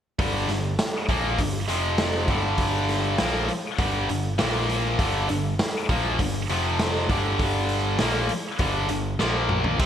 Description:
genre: hard rock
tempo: 100 BPM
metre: 4/4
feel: straight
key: G minor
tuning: A4 = 439 Hz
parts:
  - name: tight distorted guitar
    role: riff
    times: 0.2-9.9 s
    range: F2 to C4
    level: -24 LUFS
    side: left 1 dB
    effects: distortion
  - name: overdriven picked electric bass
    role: bass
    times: 0.2-9.9 s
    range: F1 to C2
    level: -28 LUFS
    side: equal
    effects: none
  - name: raw garage drum kit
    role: drums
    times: 0.2-9.9 s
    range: crash cymbal, hi-hat, kick drum, snare drum, toms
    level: -27 LUFS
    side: equal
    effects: none
room: moderate plate reverb, RT60 2.8 s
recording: bright 1980s-style digital production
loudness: -22 LUFS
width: side -9 dB against mid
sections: 0.2-9.9 A section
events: drum fill 9.2-9.8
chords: 0.2 Gm; 1.7 F5; 2.3 Gm; 4.4 Bb5; 5.0 Gm; 6.5 F5; 7.1 Gm; 9.2 Bb5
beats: | 0.19 0.79 1.39 1.99 | 2.59 3.19 3.79 4.39 | 4.99 5.59 6.19 6.79 | 7.39 7.99 8.59 9.19 | 9.79

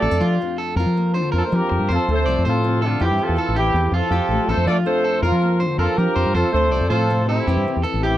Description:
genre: highlife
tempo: 108 BPM (dotted quarters)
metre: 12/8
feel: straight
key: F major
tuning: A4 = 440 Hz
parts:
  - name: warm horn section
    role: melody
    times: 0.0-8.2 s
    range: C4 to D5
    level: -21 LUFS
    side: equal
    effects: none
  - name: warm trombone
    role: second line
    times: 0.0-8.2 s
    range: C3 to A3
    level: -28 LUFS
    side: right 7 dB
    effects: none
  - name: nylon-string guitar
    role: accompaniment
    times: 0.0-8.2 s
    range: F2 to G4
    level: -27 LUFS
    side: left 8 dB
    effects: none
  - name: electric guitar at the edge of break-up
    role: arpeggios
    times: 0.0-8.2 s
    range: F4 to D5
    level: -25 LUFS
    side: right 2 dB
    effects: tape echo
  - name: fingered electric bass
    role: bass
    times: 0.0-8.2 s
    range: A1 to F3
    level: -20 LUFS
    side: equal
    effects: none
room: little or no reverb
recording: dry, close 1970s-style studio recording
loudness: -17 LUFS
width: side -13 dB against mid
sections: 0.0-8.2 A section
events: none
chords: 0.0 Dm; 0.8 Bb/F; 1.9 F; 3.0 C; 4.1 Dm; 5.2 Bb/F; 6.3 F; 7.5 C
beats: 0.21 0.77 1.33 | 1.89 2.45 3.00 3.56 | 4.12 4.68 5.24 5.79 | 6.35 6.91 7.46 8.02

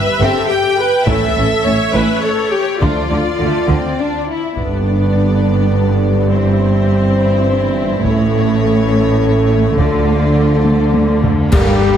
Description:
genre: cinematic, epic orchestral film score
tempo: 103 BPM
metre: 3/4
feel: straight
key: D dorian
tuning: A4 = 440 Hz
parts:
  - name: clear symphonic violin section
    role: melody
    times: 0.0-12.0 s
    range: Bb3 to G5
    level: -23 LUFS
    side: left 2 dB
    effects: none
  - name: clear symphonic viola section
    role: accompaniment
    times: 0.0-12.0 s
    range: D3 to C#5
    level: -21 LUFS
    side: left 1 dB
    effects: none
  - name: warm symphonic violin section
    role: second line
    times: 0.2-12.0 s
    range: A3 to G4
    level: -24 LUFS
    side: left 2 dB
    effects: none
  - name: clear symphonic cello section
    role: bass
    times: 0.2-12.0 s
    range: G2 to G3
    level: -18 LUFS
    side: right 1 dB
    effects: none
  - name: rich symphonic double bass section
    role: bass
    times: 0.2-12.0 s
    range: G1 to G2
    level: -18 LUFS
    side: right 2 dB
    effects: none
  - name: dark French horn section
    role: sustained chords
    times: 1.1-12.0 s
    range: C4 to C5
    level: -19 LUFS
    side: left 3 dB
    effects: none
  - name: warm trombone section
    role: sustained chords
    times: 1.1-11.7 s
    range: D3 to Bb3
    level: -24 LUFS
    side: right 3 dB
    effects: none
  - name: taiko ensemble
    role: drums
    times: 1.1-12.0 s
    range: none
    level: -19 LUFS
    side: left 1 dB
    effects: none
  - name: cymbal swell, clash cymbals and concert bass drum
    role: percussion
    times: 8.0-12.0 s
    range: none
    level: -24 LUFS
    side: left 1 dB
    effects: none
  - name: clear trumpet section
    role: stabs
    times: 11.5-12.0 s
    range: G4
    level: -22 LUFS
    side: left 3 dB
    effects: none
room: wet scoring stage reverb, RT60 1.8 s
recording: heavily compressed radio sound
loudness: -12 LUFS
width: side -9 dB against mid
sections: 0.0-4.6 A section; 4.6-11.5 B section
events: drum fill 10.7-11.5; band accent 11.5-12.0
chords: 0.0 C/G; 1.1 A; 2.8 Dm; 4.6 G; 6.3 C/G; 8.0 A; 9.8 Dm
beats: 0.49 | 1.07 1.65 2.23 | 2.81 3.39 3.98 | 4.56 5.14 5.72 | 6.30 6.88 7.46 | 8.04 8.62 9.21 | 9.79 10.37 10.95 | 11.53

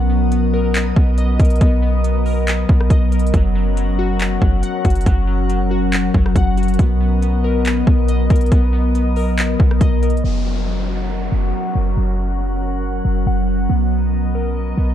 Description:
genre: hip hop, atmospheric cloud-rap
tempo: 139 BPM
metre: 4/4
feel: half-time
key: F# major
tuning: A4 = 440 Hz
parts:
  - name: glassy FM pad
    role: sustained chords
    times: 0.0-14.9 s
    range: F#3 to F#5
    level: -21 LUFS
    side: equal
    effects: ensemble chorus, built-in reverb, sidechain pumping, low-pass filter
  - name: glassy digital keys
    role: arpeggios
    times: 0.0-14.9 s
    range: F#3 to F#5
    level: -25 LUFS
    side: left 3 dB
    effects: chorus, low-pass filter, ping-pong delay
  - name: clean 808-style bass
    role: bass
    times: 0.0-14.9 s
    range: F#1 to B1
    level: -17 LUFS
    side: equal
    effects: none
  - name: trap drum kit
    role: drums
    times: 0.3-10.2 s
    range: handclaps, hi-hat, kick drum, rim click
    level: -17 LUFS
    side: equal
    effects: none
  - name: downlifter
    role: sound effects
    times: 10.2-13.7 s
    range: none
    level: -34 LUFS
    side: equal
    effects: none
room: little or no reverb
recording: dark, warm production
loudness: -14 LUFS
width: side -11 dB against mid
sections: 0.0-10.2 A section; 10.2-14.9 B section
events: filter sweep 10.2-14.9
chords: 0.0 Bmaj7; 3.3 F#; 6.8 Bmaj7; 10.2 F#; 13.7 Bmaj7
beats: 0.32 0.75 1.18 | 1.61 2.04 2.47 2.90 | 3.34 3.77 4.20 4.63 | 5.06 5.49 5.93 6.36 | 6.79 7.22 7.65 8.08 | 8.52 8.95 9.38 9.81 | 10.24 10.67 11.11 11.54 | 11.97 12.40 12.83 13.26 | 13.70 14.13 14.56

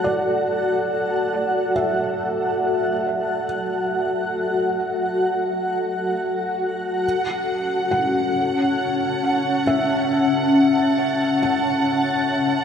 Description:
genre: ambient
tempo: 69 BPM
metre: 4/4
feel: straight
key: D major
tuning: A4 = 441 Hz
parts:
  - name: granular cloud pad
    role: sustained chords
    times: 0.0-12.6 s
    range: C#4 to A5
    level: -20 LUFS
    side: left 1 dB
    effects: built-in reverb
  - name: felt-muted upright piano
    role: arpeggios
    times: 0.0-12.6 s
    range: D5 to F#5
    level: -27 LUFS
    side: right 2 dB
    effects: tape echo
  - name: warm symphonic violin section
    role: texture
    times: 7.0-12.6 s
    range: F#5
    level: -27 LUFS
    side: equal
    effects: none
room: wet cathedral reverb, RT60 7.0 s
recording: in a vast, echoing space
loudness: -19 LUFS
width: side -7 dB against mid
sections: 0.0-12.6 A section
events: none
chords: 0.0 Dmaj7; 7.0 F#m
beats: | 0.05 0.91 1.77 2.64 | 3.52 4.38 5.26 6.14 | 7.04 7.92 8.80 9.68 | 10.56 11.42 12.29

